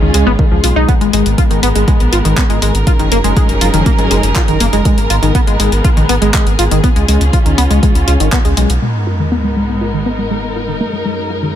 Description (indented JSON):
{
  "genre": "melodic techno",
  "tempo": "121 BPM",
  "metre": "4/4",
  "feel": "straight",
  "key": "G# dorian",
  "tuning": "A4 = 440 Hz",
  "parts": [
    { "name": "dark chamber string section", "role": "sustained chords", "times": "0.0-11.6 s", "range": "F#2 to A#4", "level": "-19 LUFS", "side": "equal", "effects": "sidechain pumping" },
    { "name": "tight sequenced synth", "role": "arpeggios", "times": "0.0-11.5 s", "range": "D#3 to E#4", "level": "-16 LUFS", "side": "left 1 dB", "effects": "chorus, sidechain pumping, ping-pong delay" },
    { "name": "round analog bass", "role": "bass", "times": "0.0-8.8 s", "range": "F#1 to C#2", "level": "-14 LUFS", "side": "equal", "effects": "sidechain pumping" },
    { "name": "analog drone", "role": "drone", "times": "0.0-8.9 s", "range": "G#2 to G#3", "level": "-24 LUFS", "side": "left 1 dB", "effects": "none" },
    { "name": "deep house drum kit", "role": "drums", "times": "0.1-8.8 s", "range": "handclaps, hi-hat", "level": "-21 LUFS", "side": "left 1 dB", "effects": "sidechain pumping on hats" },
    { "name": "electronic kick drum", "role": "drums", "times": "0.4-8.4 s", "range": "none", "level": "-13 LUFS", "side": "equal", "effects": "none" },
    { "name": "sub drop", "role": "sound effects", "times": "8.8-10.8 s", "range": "none", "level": "-20 LUFS", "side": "equal", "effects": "none" }
  ],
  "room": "digital ambience",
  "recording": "none",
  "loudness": "-10 LUFS",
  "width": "side -10 dB against mid",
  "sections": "0.0-8.8 A section; 8.8-11.6 B section",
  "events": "band accent 8.3; impact 8.8-10.8",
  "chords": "0.0 C#; 0.9 G#madd9; 2.9 F#6; 4.9 G#madd9; 6.8 C#; 8.8 G#madd9; 10.8 F#6"
}